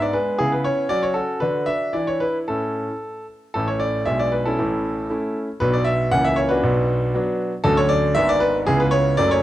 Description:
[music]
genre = classical-period piano sonatina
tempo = 117 BPM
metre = 2/4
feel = straight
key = A major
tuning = A4 = 440 Hz
[part]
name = bright concert grand piano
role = solo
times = 0.0-9.4 s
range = F#1 to F#5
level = -18 LUFS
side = equal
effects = none
[sound]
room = light reverb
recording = close, detailed microphones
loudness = -18 LUFS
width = side -14 dB against mid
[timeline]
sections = 0.0-3.5 A section; 3.5-9.4 B section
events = none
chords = 0.4 C#m7; 0.9 F#m; 1.4 Bm/D; 1.9 E5; 2.5 A; 4.1 G#dim/B; 4.6 A; 5.6 Bm; 6.1 A#dim/C#; 6.6 Bm; 7.7 Dmaj7; 8.2 G#dim; 8.7 C#m7

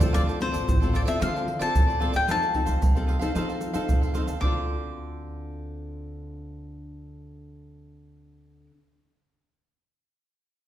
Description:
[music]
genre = samba and choro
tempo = 112 BPM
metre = 4/4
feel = straight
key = D minor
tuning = A4 = 438 Hz
[part]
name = cavaquinho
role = accompaniment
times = 0.0-8.7 s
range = Eb4 to F5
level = -34 LUFS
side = right 5 dB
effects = none
[part]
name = nylon-string guitar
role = accompaniment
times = 0.0-8.8 s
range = A2 to A4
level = -33 LUFS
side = left 4 dB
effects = none
[part]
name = upright bass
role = bass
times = 0.0-8.7 s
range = A1 to F3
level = -31 LUFS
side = equal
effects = none
[part]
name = tube shaker, surdo and pandeiro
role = percussion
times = 0.0-4.5 s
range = none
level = -25 LUFS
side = right 1 dB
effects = none
[part]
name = cavaquinho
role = melody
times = 0.1-8.7 s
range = C5 to D6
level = -28 LUFS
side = left 3 dB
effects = none
[sound]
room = wet recital hall reverb, RT60 1.4 s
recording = recorded in a church or concert hall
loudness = -22 LUFS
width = side -12 dB against mid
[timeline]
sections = 0.1-4.4 A section; 4.4-8.7 B section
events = none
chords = 0.1 Dm7; 2.3 F7; 4.4 Dm7

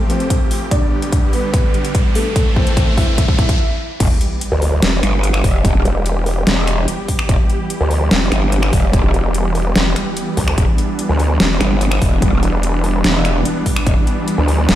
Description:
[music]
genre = heavy wobble dubstep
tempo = 146 BPM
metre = 4/4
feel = half-time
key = E phrygian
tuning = A4 = 441 Hz
[part]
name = supersaw chords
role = sustained chords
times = 0.0-14.8 s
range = D3 to A4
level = -22 LUFS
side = right 1 dB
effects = sidechain pumping, low-pass filter
[part]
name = riser and sub drop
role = sound effects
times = 0.0-5.6 s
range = none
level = -26 LUFS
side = equal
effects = none
[part]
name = dark grand piano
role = melody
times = 0.1-3.9 s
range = A3 to E5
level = -23 LUFS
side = equal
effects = low-pass filter, tape echo
[part]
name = dubstep drum kit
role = drums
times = 0.1-14.8 s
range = crash cymbal, finger snaps, hi-hat, snare drum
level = -20 LUFS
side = equal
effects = overdrive, high-pass filter on hats, high-pass filter on snare, high-pass filter on cymbals, high-pass filter on room
[part]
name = electronic kick drum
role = drums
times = 0.3-13.9 s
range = none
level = -15 LUFS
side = equal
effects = overdrive
[part]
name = growl bass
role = bass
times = 4.0-14.0 s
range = E1 to G1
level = -16 LUFS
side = equal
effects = chorus, overdrive
[part]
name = vowel-sweep wobble bass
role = bass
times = 4.5-14.8 s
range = E1 to D2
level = -16 LUFS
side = equal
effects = chorus, overdrive
[sound]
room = light reverb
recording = played on a big sound system in a bare room, stone room reverb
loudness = -13 LUFS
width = side -12 dB against mid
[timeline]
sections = 0.0-4.0 A section; 4.0-14.8 B section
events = build-up 0.0-4.0; riser 0.0-3.6; filter sweep on grand piano 0.0-4.0; drum fill 0.7-3.6; break 3.6-4.0; drop 4.0-14.8; impact 4.0-5.6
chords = 0.0 Fadd9; 0.7 G; 2.4 Am; 4.0 Em

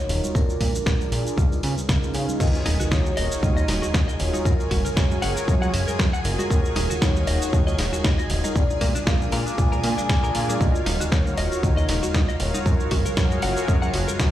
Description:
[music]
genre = nu-disco, nu disco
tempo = 117 BPM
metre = 4/4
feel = swing 55% on 16ths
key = Eb minor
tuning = A4 = 438 Hz
[part]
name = vibraphone with medium mallets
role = melody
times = 0.0-14.2 s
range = F4 to Ab5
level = -31 LUFS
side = moving between left 3 dB and right 4 dB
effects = auto-pan, tape echo
[part]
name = warm analog pad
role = accompaniment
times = 0.1-14.2 s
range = Db4 to F5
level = -29 LUFS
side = equal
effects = chorus, sidechain pumping, slapback echo
[part]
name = fat analog bass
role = bass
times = 0.1-14.3 s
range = Eb1 to Db3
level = -26 LUFS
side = equal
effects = tube saturation
[part]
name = dusty soul sampler-style drum kit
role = drums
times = 0.1-14.3 s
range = crash cymbal, hi-hat, shaker, snare drum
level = -29 LUFS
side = equal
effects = none
[part]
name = congas and tambourine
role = percussion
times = 0.1-14.3 s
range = none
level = -34 LUFS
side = right 4 dB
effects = none
[part]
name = electronic kick drum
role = drums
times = 0.3-14.3 s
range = none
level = -22 LUFS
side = equal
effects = none
[part]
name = string machine, full ensemble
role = sustained chords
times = 2.4-14.3 s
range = Ab4 to Ab5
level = -35 LUFS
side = right 1 dB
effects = ensemble chorus, vintage 12-bit sampler grit, sidechain pumping
[part]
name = impact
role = sound effects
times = 2.4-4.5 s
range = none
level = -31 LUFS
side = equal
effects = none
[part]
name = direct-recorded clean electric guitar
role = riff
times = 2.7-14.2 s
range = Bb3 to Gb5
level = -32 LUFS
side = left 3 dB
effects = lush chorus, slapback echo
[sound]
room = digital ambience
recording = played on a big sound system in a bare room, large studio reverb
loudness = -20 LUFS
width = side -12 dB against mid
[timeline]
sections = 0.0-2.4 A section; 2.4-14.3 B section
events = drop 2.4-14.3; impact 2.4-4.5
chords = 0.3 Bb7; 1.4 Db7; 2.4 Ebm7; 4.5 Gbmaj7; 6.5 Ebm7; 8.6 Bb7; 10.6 Ebm7; 12.7 Gbmaj7

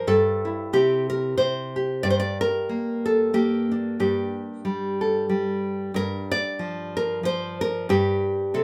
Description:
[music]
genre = folk, solo fingerstyle acoustic guitar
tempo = 92 BPM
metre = 3/4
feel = swing 56% on 8ths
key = G dorian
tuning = A4 = 440 Hz
[part]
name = nylon-string guitar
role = solo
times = 0.0-8.6 s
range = G2 to D5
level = -24 LUFS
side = equal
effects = none
[sound]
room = moderate studio ambience, RT60 0.5 s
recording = band playing live in one room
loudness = -24 LUFS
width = mono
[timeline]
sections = 0.0-8.6 A section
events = none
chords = 0.1 C/G; 2.0 Gmadd9; 5.9 Gm7; 7.9 C5/G

